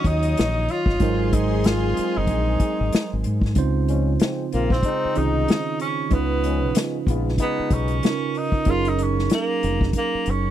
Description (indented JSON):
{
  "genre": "R&B, neo-soul",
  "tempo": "94 BPM",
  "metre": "4/4",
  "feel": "swing 58% on 16ths",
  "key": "Db major",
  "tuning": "A4 = 440 Hz",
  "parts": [
    { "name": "clear tenor saxophone", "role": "melody", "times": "0.0-10.5 s", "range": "Bb3 to F4", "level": "-26 LUFS", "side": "equal", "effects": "none" },
    { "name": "tine electric piano", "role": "accompaniment", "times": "0.0-10.5 s", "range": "Db3 to Db5", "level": "-26 LUFS", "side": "right 10 dB", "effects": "none" },
    { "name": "lush unison pad", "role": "sustained chords", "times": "0.0-3.5 s", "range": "Ab4 to Eb6", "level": "-34 LUFS", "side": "equal", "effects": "chorus" },
    { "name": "warm trombone section", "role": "stabs", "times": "0.0-8.0 s", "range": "F3 to Ab4", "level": "-29 LUFS", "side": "left 8 dB", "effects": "none" },
    { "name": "unplugged drum kit", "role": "drums", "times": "0.0-10.4 s", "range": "hi-hat, kick drum, snare drum", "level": "-21 LUFS", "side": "left 1 dB", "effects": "none" },
    { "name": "deep dub fingered electric bass", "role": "bass", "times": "0.1-10.5 s", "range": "F1 to Ab2", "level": "-23 LUFS", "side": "left 1 dB", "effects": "none" }
  ],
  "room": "little or no reverb",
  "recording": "dry, close 1970s-style studio recording",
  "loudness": "-19 LUFS",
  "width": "side -11 dB against mid",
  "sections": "0.0-3.6 A section; 3.6-10.5 B section",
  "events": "tenor saxophone solo 3.6-10.5",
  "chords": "0.0 Ebm7; 1.0 Ab7; 3.6 Dbmaj9; 6.1 Db9; 8.7 Gb69"
}